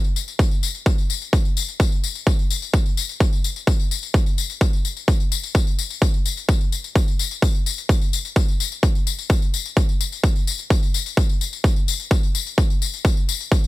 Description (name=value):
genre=EDM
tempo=128 BPM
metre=4/4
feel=straight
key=none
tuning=none
part: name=tambourine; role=drums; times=0.0-13.7 s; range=none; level=-27 LUFS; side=left 10 dB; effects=overdrive, studio ambience
part: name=electronic kick drum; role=drums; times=0.4-13.6 s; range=none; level=-18 LUFS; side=equal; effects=overdrive, studio ambience
room=little or no reverb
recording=none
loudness=-18 LUFS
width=side -18 dB against mid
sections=0.0-13.7 A section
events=none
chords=none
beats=0.39 0.86 | 1.33 1.80 2.27 2.74 | 3.20 3.67 4.14 4.61 | 5.08 5.55 6.02 6.49 | 6.95 7.42 7.89 8.36 | 8.83 9.30 9.77 10.24 | 10.70 11.17 11.64 12.11 | 12.58 13.05 13.52